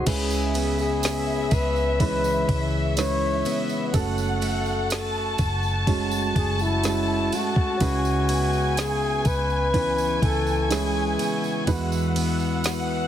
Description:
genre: pop ballad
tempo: 62 BPM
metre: 4/4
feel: straight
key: C# minor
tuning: A4 = 439 Hz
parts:
  - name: breathy flugelhorn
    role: melody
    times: 0.0-11.4 s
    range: E4 to C#5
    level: -26 LUFS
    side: left 2 dB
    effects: none
  - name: dark upright piano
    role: accompaniment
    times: 0.0-13.1 s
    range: C#3 to C#5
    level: -29 LUFS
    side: right 7 dB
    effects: none
  - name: mellow tonewheel organ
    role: sustained chords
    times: 0.0-13.1 s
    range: G#4 to E6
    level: -36 LUFS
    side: left 1 dB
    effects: slow rotary speaker
  - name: fingerpicked plugged-in steel-string acoustic guitar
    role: arpeggios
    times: 0.0-13.1 s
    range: F#2 to G#4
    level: -30 LUFS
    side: left 6 dB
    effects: none
  - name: vintage muted fingered electric bass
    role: bass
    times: 0.0-13.1 s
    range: F#1 to E2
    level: -28 LUFS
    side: equal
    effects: none
  - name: dark studio violin section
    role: second line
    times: 0.1-13.1 s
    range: E5 to A5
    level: -30 LUFS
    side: equal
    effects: none
  - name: smooth R&B drum kit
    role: drums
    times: 0.1-12.9 s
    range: crash cymbal, kick drum, ride cymbal, snare drum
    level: -29 LUFS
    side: equal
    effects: none
  - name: tambourine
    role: percussion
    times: 0.1-12.9 s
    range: none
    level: -38 LUFS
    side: right 9 dB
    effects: none
room: light reverb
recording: heavily compressed radio sound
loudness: -21 LUFS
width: side -10 dB against mid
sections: 0.1-13.1 A section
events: none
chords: 0.1 C#m7; 3.9 F#madd9; 7.8 C#m7; 11.7 Eadd9

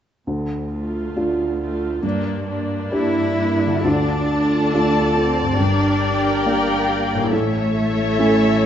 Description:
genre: cinematic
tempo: 69 BPM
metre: 4/4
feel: rubato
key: D minor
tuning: A4 = 439 Hz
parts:
  - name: felt-muted upright piano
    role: accompaniment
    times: 0.3-8.7 s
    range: D2 to G4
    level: -22 LUFS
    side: right 1 dB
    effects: none
  - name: rich studio cello section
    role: bass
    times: 0.3-8.7 s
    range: D2 to E4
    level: -22 LUFS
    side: right 2 dB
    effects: none
  - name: rich studio viola section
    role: accompaniment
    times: 0.7-8.7 s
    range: A3 to Bb4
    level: -25 LUFS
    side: left 1 dB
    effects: none
  - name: concert harp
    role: arpeggios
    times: 3.7-8.7 s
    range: G2 to Bb4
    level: -27 LUFS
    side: left 6 dB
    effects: none
  - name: rich studio violin section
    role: second line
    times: 3.8-8.7 s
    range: C#5 to A5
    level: -23 LUFS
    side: left 3 dB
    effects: none
  - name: warm studio double bass section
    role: bass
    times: 3.8-8.7 s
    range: G1 to D2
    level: -27 LUFS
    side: right 3 dB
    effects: none
room: moderate scoring stage reverb, RT60 1.6 s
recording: nothing above 7.9 kHz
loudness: -17 LUFS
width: side -9 dB against mid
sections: 0.3-3.8 A section; 3.8-8.7 B section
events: none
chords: 0.3 Dm; 2.0 Gm; 3.8 Dm; 5.6 Gm; 7.3 A

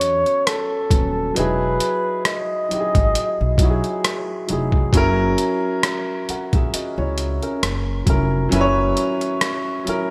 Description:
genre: R&B, neo-soul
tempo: 67 BPM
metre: 4/4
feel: swing 55% on 16ths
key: unclear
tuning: A4 = 440 Hz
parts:
  - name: breathy flugelhorn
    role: melody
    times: 0.0-4.0 s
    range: A4 to D#5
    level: -24 LUFS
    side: equal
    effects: none
  - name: warm upright piano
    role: accompaniment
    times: 0.0-10.1 s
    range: F#3 to F#5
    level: -24 LUFS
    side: equal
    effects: none
  - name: upright bass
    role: bass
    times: 0.0-9.9 s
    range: D#1 to E2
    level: -25 LUFS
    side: equal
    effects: none
  - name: boom bap sampler-style drum kit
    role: drums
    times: 0.0-10.1 s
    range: hi-hat, kick drum, rim click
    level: -23 LUFS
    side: equal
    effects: none
room: moderate plate reverb, RT60 2.3 s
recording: bright 1980s-style digital production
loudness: -20 LUFS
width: mono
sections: 0.0-10.1 A section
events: none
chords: 0.0 A69; 1.3 Emaj9; 4.9 F#7

